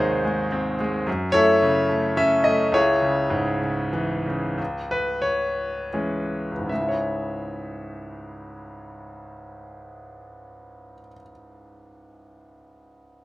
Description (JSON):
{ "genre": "classical, lyrical solo piano", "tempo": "73-109 BPM", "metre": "3/4", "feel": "rubato", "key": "C# minor", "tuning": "A4 = 441 Hz", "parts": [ { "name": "bright grand piano", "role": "solo", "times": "0.0-13.2 s", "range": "C#2 to E5", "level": "-22 LUFS", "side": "left 1 dB", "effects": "none" } ], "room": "light reverb", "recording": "none", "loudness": "-20 LUFS", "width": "side -17 dB against mid", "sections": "0.0-4.6 A section; 4.6-6.7 B section; 6.7-11.4 C section", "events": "slowing down 2.7-6.7", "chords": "0.0 G#; 1.1 F#m7; 2.7 C#m", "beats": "0.52 | 1.07 1.62 2.18 | 2.74 3.31 3.94 | 4.60 5.25 5.94 | 6.71 7.50 8.27 | 9.03 9.79 10.58" }